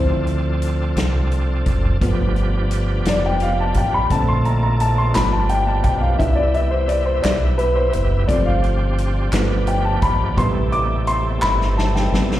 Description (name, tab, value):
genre	slow gospel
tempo	57 BPM (dotted quarters)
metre	6/8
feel	straight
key	unclear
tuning	A4 = 441 Hz
part	dark upright piano	accompaniment	0.0-12.4 s	C3 to D6	-21 LUFS	left 2 dB	plate reverb, slapback echo
part	bright tonewheel organ	sustained chords	0.0-12.4 s	C3 to A4	-26 LUFS	right 2 dB	slow rotary speaker, overdrive, chorus vibrato
part	deep dub fingered electric bass	bass	0.0-12.4 s	F1 to D2	-20 LUFS	equal	none
part	natural country drum kit	drums	0.3-12.4 s	hi-hat, kick drum, snare drum	-23 LUFS	equal	none
part	group handclap	percussion	5.1-11.7 s	none	-31 LUFS	right 1 dB	slapback echo
room	light reverb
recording	live gig heard through the venue's PA, recital hall reverb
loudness	-16 LUFS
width	side -13 dB against mid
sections	0.0-12.4 A section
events	upright piano solo 0.0-12.4; drum fill 11.4-12.4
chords	0.0 Dm7; 2.0 G7; 4.1 Bbmaj7; 5.2 G7; 6.2 Cmaj7; 8.3 G7sus4; 9.3 G7; 10.4 Am7